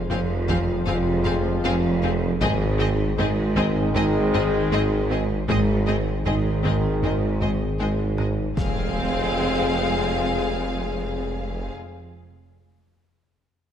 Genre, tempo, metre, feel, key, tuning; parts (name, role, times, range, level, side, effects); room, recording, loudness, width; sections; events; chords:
cinematic, hybrid orchestral and electronic film score; 78 BPM; 4/4; straight; F minor; A4 = 440 Hz
dark analog pad; sustained chords; 0.0-11.7 s; F3 to C5; -34 LUFS; left 1 dB
warm French horn section; sustained chords; 0.0-11.7 s; C4 to Ab4; -31 LUFS; left 7 dB
warm trombone section; sustained chords; 0.0-11.7 s; Eb3 to Ab3; -31 LUFS; right 1 dB
saturated sub bass; bass; 0.0-11.7 s; F1 to Ab1; -32 LUFS; left 1 dB
warm symphonic violin section; melody; 0.1-11.7 s; Eb5 to F5; -32 LUFS; left 3 dB
warm studio violin section; second line; 0.1-11.7 s; Ab4; -33 LUFS; left 5 dB
rich studio viola section; accompaniment; 0.1-11.7 s; C4; -33 LUFS; right 1 dB
tight sequenced synth; arpeggios; 0.1-8.0 s; F3 to Ab4; -34 LUFS; left 3 dB
plucky analog bass; riff; 0.1-8.4 s; F2 to Ab3; -31 LUFS; right 1 dB
clear studio cello section; bass; 0.1-11.7 s; F2 to Ab2; -29 LUFS; right 3 dB
rich symphonic double bass section; bass; 0.1-11.7 s; F1 to Ab1; -30 LUFS; right 2 dB
warm tuba; bass; 0.1-11.7 s; F1 to Ab1; -29 LUFS; right 4 dB
solo taiko drums; drums; 0.1-8.5 s; -32 LUFS; left 1 dB
impact; sound effects; 8.6-11.7 s; -30 LUFS; left 1 dB
moderate scoring stage reverb, RT60 1.8 s; -20 LUFS; side -9 dB against mid
0.0-8.6 A section; 8.6-11.6 B section
impact 8.6-11.6
0.0 Fm; 2.4 Ab; 8.6 Fm